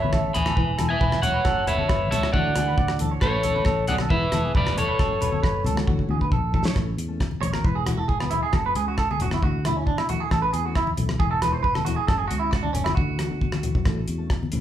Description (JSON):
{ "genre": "highlife guitar band", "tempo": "135 BPM", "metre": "4/4", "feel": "straight", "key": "A major", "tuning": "A4 = 440 Hz", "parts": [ { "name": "electric guitar at the edge of break-up", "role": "melody", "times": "0.0-6.1 s", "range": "A4 to B5", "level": "-24 LUFS", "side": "equal", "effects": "none" }, { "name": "fingerpicked steel-string acoustic guitar", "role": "accompaniment", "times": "0.0-14.6 s", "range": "E3 to A4", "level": "-33 LUFS", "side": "left 4 dB", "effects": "none" }, { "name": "clean electric guitar", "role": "arpeggios", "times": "0.0-14.3 s", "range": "B3 to D5", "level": "-27 LUFS", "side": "right 3 dB", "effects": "none" }, { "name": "fingered electric bass", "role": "bass", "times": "0.0-14.6 s", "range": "E1 to E2", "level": "-28 LUFS", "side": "equal", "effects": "none" }, { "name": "congas", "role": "percussion", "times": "0.0-14.6 s", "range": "none", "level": "-30 LUFS", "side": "left 2 dB", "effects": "none" }, { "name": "damped 70s drum kit", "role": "drums", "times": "0.1-14.6 s", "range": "hi-hat, kick drum, rim click, snare drum", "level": "-25 LUFS", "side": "equal", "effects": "none" } ], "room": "moderate large studio reverb, RT60 0.9 s", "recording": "band playing live in one room", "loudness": "-21 LUFS", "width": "side -11 dB against mid", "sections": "0.0-6.8 A section; 6.8-14.6 B section", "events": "drum fill 5.9-6.8, 13.3-13.9; clean electric guitar solo 6.8-14.6", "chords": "0.0 A; 0.6 E; 1.5 F#m; 2.3 Dadd9; 3.2 A; 4.1 E; 5.0 F#m; 5.9 Dadd9; 6.8 A; 7.6 E; 8.5 F#m; 9.4 Dadd9; 10.3 A; 11.2 E; 12.1 F#m; 13.0 Dadd9; 13.9 A" }